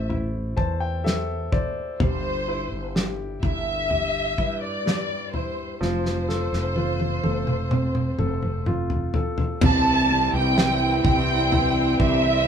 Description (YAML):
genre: pop ballad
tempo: 63 BPM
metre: 4/4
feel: straight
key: unclear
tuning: A4 = 440 Hz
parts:
  - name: dark studio violin section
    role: melody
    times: 0.0-12.5 s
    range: C5 to A5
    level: -25 LUFS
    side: right 1 dB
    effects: none
  - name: clear concert grand piano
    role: accompaniment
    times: 0.0-12.5 s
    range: C3 to A5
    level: -28 LUFS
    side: left 1 dB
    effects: none
  - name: fretless electric bass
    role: bass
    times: 0.0-12.5 s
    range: F1 to G2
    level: -28 LUFS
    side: equal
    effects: none
  - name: loose indie drum kit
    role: drums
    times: 0.1-12.2 s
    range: crash cymbal, kick drum, snare drum, toms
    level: -25 LUFS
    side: equal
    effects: none
  - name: warm French horn section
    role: second line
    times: 9.6-12.5 s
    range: E3 to E4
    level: -28 LUFS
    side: right 2 dB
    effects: none
  - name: warm studio string section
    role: sustained chords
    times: 9.6-12.5 s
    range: E3 to C4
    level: -27 LUFS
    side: left 1 dB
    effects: none
room: moderate studio reverb, RT60 0.6 s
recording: band playing live in one room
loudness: -21 LUFS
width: side -8 dB against mid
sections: 0.0-9.6 A section; 9.6-12.5 B section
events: grand piano fill 0.1-2.0; drum fill 5.8-9.6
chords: 0.0 Am; 2.0 C/G; 5.8 F; 9.6 C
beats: 0.10 1.05 | 2.00 2.95 3.91 4.86 | 5.81 6.76 7.71 8.67 | 9.62 10.57 11.53